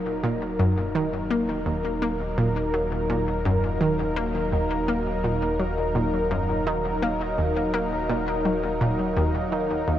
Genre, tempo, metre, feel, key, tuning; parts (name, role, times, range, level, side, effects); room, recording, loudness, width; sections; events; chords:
ambient; 84 BPM; 4/4; straight; Eb minor; A4 = 441 Hz
lush unison pad; sustained chords; 0.0-10.0 s; Gb3 to Bb4; -26 LUFS; equal; chorus
analog pluck; riff; 0.0-10.0 s; Eb2 to Bb3; -26 LUFS; equal; chorus, cassette tape, ping-pong delay
round analog bass; bass; 0.0-10.0 s; Eb1; -33 LUFS; equal
pulsing gated texture; texture; 0.4-10.0 s; F5; -40 LUFS; right 2 dB
wet huge ambient reverb, RT60 9.0 s; worn, warbling old tape, cassette tape, warbly pitch drift; -22 LUFS; side -11 dB against mid
0.0-10.0 A section
0.0 Ebm